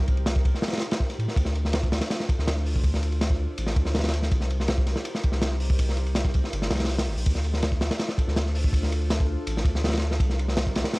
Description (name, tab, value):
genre	drum and bass, jungle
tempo	163 BPM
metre	4/4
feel	straight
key	D phrygian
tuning	A4 = 440 Hz
part	warbly tape-like pad	sustained chords	0.0-11.0 s	D4 to C5	-38 LUFS	equal	chorus, built-in reverb
part	saturated sub bass	bass	0.0-10.8 s	G1 to A2	-26 LUFS	equal	none
part	crunchy breakbeat drum kit	drums	0.1-11.0 s	hi-hat, kick drum, ride cymbal, snare drum	-24 LUFS	equal	none
room	little or no reverb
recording	dry, gritty hardware recording, cassette tape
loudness	-22 LUFS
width	side -24 dB against mid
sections	0.0-1.4 A section; 1.4-11.0 A section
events	drop 0.0-1.4, 1.4-11.0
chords	0.0 Cm7; 1.4 Dm7; 4.3 Cm7; 7.3 Dm7; 10.2 Cm7